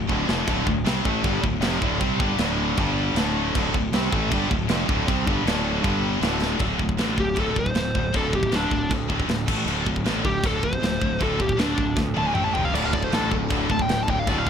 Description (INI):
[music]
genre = heavy metal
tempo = 156 BPM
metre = 4/4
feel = straight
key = D minor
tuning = A4 = 437 Hz
[part]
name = distorted electric guitar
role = riff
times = 0.0-6.6, 12.7-14.5 s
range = D2 to C4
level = -28 LUFS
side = equal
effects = overdrive
[part]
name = scooped high-gain guitar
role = riff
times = 0.0-14.5 s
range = D2 to C4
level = -29 LUFS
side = left 8 dB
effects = distortion
[part]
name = scooped high-gain guitar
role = riff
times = 0.0-14.5 s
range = D2 to C4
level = -28 LUFS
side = right 7 dB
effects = distortion
[part]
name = fuzz fingered electric bass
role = bass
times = 0.0-14.5 s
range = D1 to D2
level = -28 LUFS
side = equal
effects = overdrive
[part]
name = tight metal drum kit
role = drums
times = 0.1-14.5 s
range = china cymbal, crash cymbal, kick drum, snare drum, toms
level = -26 LUFS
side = equal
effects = none
[part]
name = high-gain lead guitar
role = melody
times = 7.2-14.5 s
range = D4 to A5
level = -26 LUFS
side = left 1 dB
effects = distortion
[sound]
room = light reverb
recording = none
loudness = -20 LUFS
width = side -8 dB against mid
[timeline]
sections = 0.0-6.6 A section; 6.6-14.5 B section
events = drum fill 0.1-0.5, 6.4, 12.0-12.7; lead electric guitar solo 6.6-14.5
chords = 0.0 Dm; 2.8 G5; 3.2 Dm; 5.8 G5; 6.2 D5; 9.5 A5; 9.7 D5; 12.4 A5; 12.5 F5; 12.7 D5